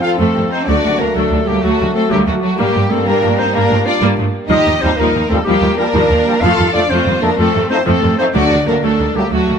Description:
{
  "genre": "cinematic",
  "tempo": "125 BPM (dotted quarters)",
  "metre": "12/8",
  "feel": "straight",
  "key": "G minor",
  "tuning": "A4 = 441 Hz",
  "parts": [
    { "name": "rich symphonic violin section", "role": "melody", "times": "0.0-9.6 s", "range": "F#4 to F5", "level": "-22 LUFS", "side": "left 1 dB", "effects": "none" },
    { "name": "mellow clarinet", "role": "second line", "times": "0.0-9.6 s", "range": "F#4 to F5", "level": "-19 LUFS", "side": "left 2 dB", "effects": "none" },
    { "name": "warm symphonic violin section", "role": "second line", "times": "0.0-9.6 s", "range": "A3 to A4", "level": "-20 LUFS", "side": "left 2 dB", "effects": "none" },
    { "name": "clear trombone section", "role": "sustained chords", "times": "0.0-9.2 s", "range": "F3 to C4", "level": "-22 LUFS", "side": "right 1 dB", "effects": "none" },
    { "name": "dark symphonic cello section", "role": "bass", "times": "0.0-9.6 s", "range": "F#3 to F4", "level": "-20 LUFS", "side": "right 2 dB", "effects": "none" },
    { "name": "rich symphonic viola section", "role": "accompaniment", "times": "0.2-9.5 s", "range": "Eb3 to Bb3", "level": "-20 LUFS", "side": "equal", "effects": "none" },
    { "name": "clear symphonic double bass section", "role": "bass", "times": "0.2-9.5 s", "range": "D2 to G2", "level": "-19 LUFS", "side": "right 2 dB", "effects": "none" },
    { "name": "timpani", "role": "percussion", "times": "8.4-8.8 s", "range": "D3", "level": "-23 LUFS", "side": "equal", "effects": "none" }
  ],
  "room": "light reverb",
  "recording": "close, detailed microphones",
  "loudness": "-12 LUFS",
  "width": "side -7 dB against mid",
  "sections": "0.0-9.6 A section",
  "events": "none",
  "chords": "0.0 F; 0.7 D; 2.6 Gm; 4.5 Ebadd9; 6.4 F; 8.3 D"
}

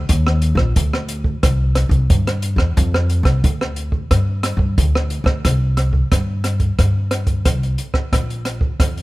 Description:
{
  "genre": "samba and choro",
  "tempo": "90 BPM",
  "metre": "4/4",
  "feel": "straight",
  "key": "unclear",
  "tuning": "A4 = 440 Hz",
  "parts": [
    { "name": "upright bass", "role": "bass", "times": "0.0-9.0 s", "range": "Bb1 to G2", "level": "-18 LUFS", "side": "equal", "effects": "none" },
    { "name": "open jazz drum kit", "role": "drums", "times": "0.1-9.0 s", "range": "hi-hat, kick drum, rim click", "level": "-18 LUFS", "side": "right 1 dB", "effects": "none" }
  ],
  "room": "little or no reverb",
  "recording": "close, detailed microphones",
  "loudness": "-15 LUFS",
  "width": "side -19 dB against mid",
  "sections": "0.0-5.4 A section; 5.4-9.0 B section",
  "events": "none",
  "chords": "none"
}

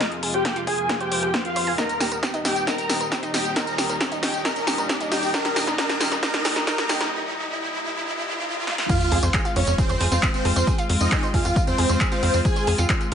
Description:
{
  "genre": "uplifting trance",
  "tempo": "135 BPM",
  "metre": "4/4",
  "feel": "straight",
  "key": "F minor",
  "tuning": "A4 = 437 Hz",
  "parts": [
    { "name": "supersaw chords", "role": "melody", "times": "0.0-13.1 s", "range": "C4 to Bb5", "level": "-26 LUFS", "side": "equal", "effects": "lush chorus, sidechain pumping, low-pass filter, ping-pong delay" },
    { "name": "dark studio string section", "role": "sustained chords", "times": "0.0-13.1 s", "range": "Eb2 to F4", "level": "-31 LUFS", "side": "left 3 dB", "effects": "sidechain pumping" },
    { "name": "analog pluck", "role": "arpeggios", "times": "0.0-13.1 s", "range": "Eb4 to Ab5", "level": "-30 LUFS", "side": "right 2 dB", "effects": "chorus, sidechain pumping, ping-pong delay" },
    { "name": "electronic kick drum", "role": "drums", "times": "0.0-13.0 s", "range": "none", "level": "-24 LUFS", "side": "equal", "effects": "overdrive, high-pass filter on kick" },
    { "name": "punchy analog drum machine", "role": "drums", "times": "0.0-13.1 s", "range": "crash cymbal, handclaps, hi-hat, snare drum, tambourine", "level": "-25 LUFS", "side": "equal", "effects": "overdrive, sidechain pumping on hats, sidechain pumping on perc, sidechain pumping on cymbals" },
    { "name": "riser and sub drop", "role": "sound effects", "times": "0.0-10.7 s", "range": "none", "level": "-30 LUFS", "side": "right 1 dB", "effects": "none" },
    { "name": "tight sequencer bass", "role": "bass", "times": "9.1-13.1 s", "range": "F2", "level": "-22 LUFS", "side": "equal", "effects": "sidechain pumping" }
  ],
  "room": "moderate digital room reverb, RT60 1.0 s",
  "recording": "high-pass filter, nothing above 10.4 kHz",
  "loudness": "-20 LUFS",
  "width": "side -8 dB against mid",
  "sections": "0.0-8.9 A section; 8.9-13.1 B section",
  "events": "build-up 0.0-8.9; drum fill 0.0-7.1, 8.7; riser 0.0-8.9; break 7.1-8.9; drop 8.9-13.1; impact 8.9-10.7",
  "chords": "0.0 Fm; 1.8 Eb; 8.9 Fm"
}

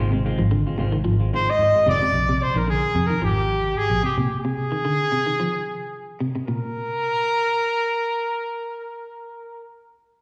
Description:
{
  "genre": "afrobeat",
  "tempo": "111 BPM",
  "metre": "4/4",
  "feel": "swing 54% on 16ths",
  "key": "unclear",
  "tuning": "A4 = 440 Hz",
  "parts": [
    { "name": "semi-hollow electric guitar", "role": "stabs", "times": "0.0-2.0 s", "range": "Eb3 to F4", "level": "-31 LUFS", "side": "equal", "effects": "slapback echo" },
    { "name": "vintage muted fingered electric bass", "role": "bass", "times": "0.0-4.3 s", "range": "F1 to Bb2", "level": "-25 LUFS", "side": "equal", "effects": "none" },
    { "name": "clean electric guitar", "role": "arpeggios", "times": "0.1-6.6 s", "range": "Bb2 to F3", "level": "-28 LUFS", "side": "equal", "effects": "subtle chorus, slapback echo" },
    { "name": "warm trumpet", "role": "melody", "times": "1.3-9.7 s", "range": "G4 to Eb5", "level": "-24 LUFS", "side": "equal", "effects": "slapback echo" }
  ],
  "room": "moderate club reverb, RT60 0.6 s",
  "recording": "live gig heard through the venue's PA, recital hall reverb",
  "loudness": "-22 LUFS",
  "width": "mono",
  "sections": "0.0-6.5 A section; 6.5-10.2 B section",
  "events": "none",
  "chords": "0.0 Ab6; 2.1 Bb7sus2; 4.3 Ab6; 6.5 N.C."
}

